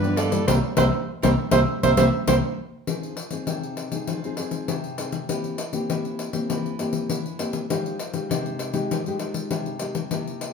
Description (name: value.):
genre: samba and choro.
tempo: 100 BPM.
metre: 4/4.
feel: straight.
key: F minor.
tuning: A4 = 441 Hz.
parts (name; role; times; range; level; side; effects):
breathy soprano saxophone; melody; 0.0-2.4 s; A4 to C5; -24 LUFS; right 6 dB; none.
cavaquinho; accompaniment; 0.0-2.4 s; F4 to E5; -29 LUFS; right 5 dB; none.
nylon-string guitar; accompaniment; 0.0-10.5 s; C3 to Ab4; -27 LUFS; left 2 dB; none.
vintage muted fingered electric bass; bass; 0.0-2.4 s; C2 to G2; -25 LUFS; right 1 dB; none.
pandeiro; percussion; 0.0-10.5 s; none; -27 LUFS; left 5 dB; none.
room: wet studio reverb, RT60 0.9 s.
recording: heard from further back in the room.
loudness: -22 LUFS.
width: side -5 dB against mid.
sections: 0.0-2.9 A section; 2.9-10.5 B section.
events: band accent 0.5-2.9.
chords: 0.5 C7; 2.9 Fm7; 5.3 C7/E; 7.7 Fm9.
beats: | 0.48 1.08 1.68 2.28 | 2.88 3.48 4.08 4.68 | 5.29 5.89 6.49 7.09 | 7.70 8.30 8.91 9.51 | 10.12.